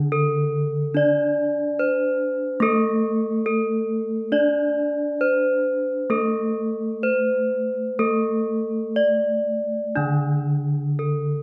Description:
gamelan; 59-72 BPM; 4/4; straight; A4 = 440 Hz
gamelan-type bronze metallophone; melody; 0.0-11.4 s; D4 to D5; -24 LUFS; equal
gamelan-type bronze metallophone; accompaniment; 0.0-11.4 s; D3 to D4; -27 LUFS; equal
wet recital hall reverb, RT60 1.5 s; -22 LUFS; mono
0.0-10.0 A section; 10.0-11.4 B section

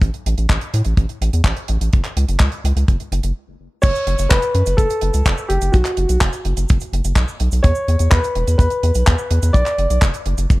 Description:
italo disco; 126 BPM; 4/4; straight; B minor; A4 = 438 Hz
round analog bass; bass; 0.0-10.6 s; E1 to A2; -18 LUFS; equal
damped 70s drum kit; drums; 0.0-10.6 s; cabasa, crash cymbal, handclaps, hi-hat; -24 LUFS; right 1 dB; small room ambience
kick drum; drums; 0.0-10.6 s; -15 LUFS; equal; small room ambience
dark grand piano; melody; 3.8-10.0 s; F#4 to D5; -21 LUFS; equal; ping-pong delay
small room ambience; dark, warm production; -15 LUFS; side -20 dB against mid
0.0-3.8 A section; 3.8-10.6 B section
stop 3.4-3.8
0.0 A5; 1.9 F#5; 5.7 B5; 7.6 E5; 9.5 Bm

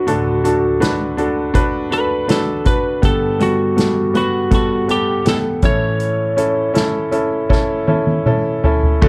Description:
pop ballad; 81 BPM; 4/4; straight; A4 = 441 Hz
lightly driven lead guitar; melody; 0.0-6.7 s; F#4 to C#5; -22 LUFS; equal; slapback echo
clear grand piano; accompaniment; 0.0-9.1 s; D2 to B4; -20 LUFS; equal
soft-mallet drum kit; drums; 0.1-9.1 s; crash cymbal, hi-hat, kick drum, snare drum, toms; -20 LUFS; equal
airy breathy pad; sustained chords; 9.0-9.1 s; barely audible
picked steel-string acoustic guitar; arpeggios; 9.0-9.1 s; D3; -19 LUFS; equal
little or no reverb; faint mains hum; -17 LUFS; mono
0.0-9.0 A section
drum fill 7.5-9.0
0.0 D; 3.0 Gadd9; 5.6 A

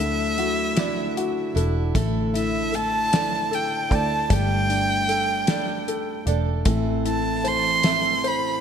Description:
six-eight pop ballad; 51 BPM (dotted quarters); 6/8; straight; A4 = 440 Hz
warm violin; melody; 0.0-8.6 s; E5 to C6; -24 LUFS; right 1 dB; digital delay
dark baby grand piano; accompaniment; 0.0-8.6 s; D3 to E5; -27 LUFS; left 6 dB
picked steel-string acoustic guitar; arpeggios; 0.0-8.6 s; A2 to A4; -29 LUFS; right 9 dB
vintage muted fingered electric bass; bass; 0.0-8.6 s; E1 to D2; -26 LUFS; equal
damped 70s drum kit; drums; 0.4-8.4 s; hi-hat, kick drum, snare drum; -25 LUFS; equal; gated reverb
moderate lush hall reverb, RT60 1.9 s, small room ambience; bright 1980s-style digital production; -20 LUFS; side -8 dB against mid
0.0-8.6 A section
0.0 Dadd9; 1.9 Asus4; 4.3 Gsus2; 6.7 Am

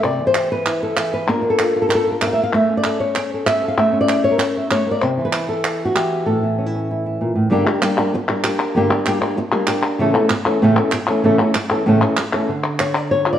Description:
flamenco; 193 BPM; 4/4; straight; A phrygian dominant; A4 = 441 Hz
flamenco guitar; melody; 0.0-13.4 s; G2 to F5; -16 LUFS; equal
palmas hand claps; percussion; 0.0-13.4 s; -22 LUFS; equal
wet stone room reverb, RT60 1.3 s; worn, warbling old tape, cassette tape, warbly pitch drift; -16 LUFS; side -10 dB against mid
0.0-7.5 A section; 7.5-12.5 B section
0.0 C; 1.3 Bb; 2.5 A; 5.0 C; 6.3 A; 7.5 Gm; 10.0 A; 12.5 N.C.

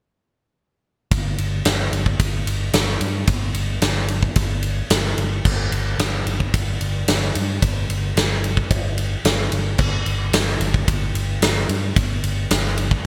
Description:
hard rock; 111 BPM; 4/4; straight; A4 = 440 Hz
picked electric bass; bass; 1.1-12.9 s; G1 to G2; -25 LUFS; equal
big rock drum kit; drums; 1.1-13.0 s; crash cymbal, kick drum, ride cymbal, snare drum; -22 LUFS; equal; gated reverb
light reverb; bright 1980s-style digital production; -21 LUFS; mono
1.1-13.1 A section

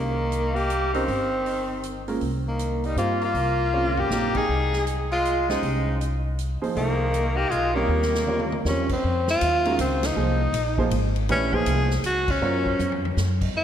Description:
modal jazz; 158 BPM; 3/4; swing 64% on 8ths; F phrygian from 9.0 s; A4 = 439 Hz
clear tenor saxophone; melody; 0.0-13.6 s; Bb3 to Ab4; -25 LUFS; equal; tape echo
clear tenor saxophone; second line; 0.0-8.6 s; Eb3 to Eb4; -30 LUFS; left 2 dB
upright bass; bass; 0.0-13.6 s; G1 to G2; -26 LUFS; equal
swinging big-band drum kit; drums; 0.3-13.5 s; crash cymbal, hi-hat, kick drum, ride cymbal, snare drum, toms; -32 LUFS; equal
clear upright piano; accompaniment; 0.9-13.0 s; C3 to Eb5; -29 LUFS; right 4 dB
wet lush hall reverb, RT60 2.0 s; dreamy mix soaked in reverb; -21 LUFS; side -9 dB against mid
0.0-9.0 A section; 9.0-13.6 B section
drum fill 3.7-4.1, 7.9-8.6, 12.8-13.2; band accent 10.0, 12.2
0.0 Cm7; 4.5 Absus2/C; 9.0 Fm7; 11.3 Gb

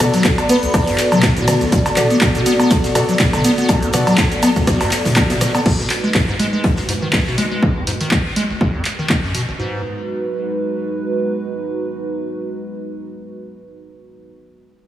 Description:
acid house; 122 BPM; 4/4; swing 55% on 16ths; G# minor; A4 = 440 Hz
dark analog pad; sustained chords; 0.0-14.3 s; G#3 to D5; -22 LUFS; right 1 dB; chorus, sidechain pumping
liquid acid bass; riff; 0.0-9.8 s; G#1 to B3; -20 LUFS; left 1 dB; chorus, tube saturation, tape echo
deep mellow chord stab; stabs; 0.0-4.1 s; B3 to D5; -24 LUFS; left 1 dB
punchy analog drum machine; drums; 0.0-9.5 s; cowbell, crash cymbal, handclaps, hi-hat, ride cymbal, rim click, shaker, toms; -19 LUFS; equal
electronic kick drum; drums; 0.2-9.2 s; -18 LUFS; equal
huge arena drum kit; drums; 0.2-7.5 s; hi-hat, snare drum; -30 LUFS; left 2 dB
airy dreamy lead; melody; 0.5-0.7 s; B4; -23 LUFS; right 2 dB; chorus, tape echo
moderate lush hall reverb, RT60 2.0 s; heavily compressed radio sound, multiband compression, small room reverb; -14 LUFS; side -12 dB against mid
0.0-5.7 A section; 5.7-9.6 B section; 9.6-13.5 C section
drop 0.0-5.7
0.0 Bm7; 5.7 G#m7

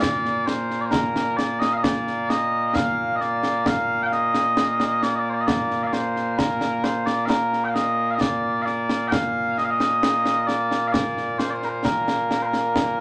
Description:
scottish traditional, Scottish pipe music; 66 BPM; 3/4; straight; Bb major; A4 = 440 Hz
mellow small bagpipes; melody; 0.0-13.0 s; Bb2 to G5; -24 LUFS; equal
concert snare drum and concert bass drum; drums; 0.0-13.0 s; -28 LUFS; equal
wet small room reverb, RT60 0.5 s; -23 LUFS; mono
0.0-13.0 A section

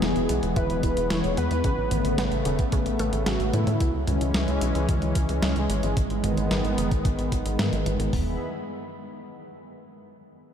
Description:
synthwave; 111 BPM; 4/4; straight; E major; A4 = 440 Hz
wide unison lead; melody; 0.0-4.0 s; E4 to C#5; -31 LUFS; right 1 dB; cassette tape, diffuse ambient delay
warm analog pad; sustained chords; 0.0-8.4 s; C#3 to B5; -28 LUFS; left 1 dB; chorus, sidechain pumping
analog pluck; arpeggios; 0.0-3.4 s; C#3 to E4; -34 LUFS; right 2 dB; chorus, analog delay
tight sequencer bass; bass; 0.0-8.4 s; E1 to A2; -28 LUFS; equal; tube saturation, sidechain pumping
clean 12-bit digital drum machine; drums; 0.0-8.1 s; hi-hat, snare drum, toms; -30 LUFS; equal
clean 12-bit digital drum machine; drums; 0.6-8.3 s; hi-hat, kick drum, toms; -26 LUFS; equal
moderate cathedral reverb, RT60 6.1 s; dreamy mix soaked in reverb; -22 LUFS; side -8 dB against mid
0.0-8.1 A section; 8.1-10.3 B section
0.0 E; 1.6 Aadd9; 3.8 C#m; 6.0 G#m; 8.1 E

